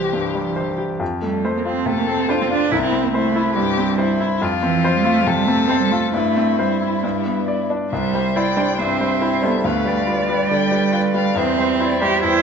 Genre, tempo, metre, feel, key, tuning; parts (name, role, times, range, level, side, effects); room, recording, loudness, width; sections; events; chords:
quick classical-period movement for piano quartet; 139 BPM; 4/4; straight; C major from 4.4 s; A4 = 441 Hz
warm violin; melody; 0.0-12.4 s; E4 to G5; -24 LUFS; left 9 dB
warm cello; second line; 0.0-12.4 s; D3 to G4; -20 LUFS; right 6 dB
bright grand piano; accompaniment; 0.0-12.4 s; C2 to D5; -21 LUFS; left 2 dB
rich viola; accompaniment; 7.9-12.4 s; A4 to D5; -24 LUFS; right 2 dB
moderate recital hall reverb, RT60 1.5 s; nothing above 7.8 kHz; -16 LUFS; side -6 dB against mid
0.0-7.9 A section; 7.9-12.4 B section
0.0 C; 1.0 F; 2.7 C; 4.4 F; 6.1 C/G; 7.0 G; 7.9 C; 9.6 G7/D; 11.4 C/E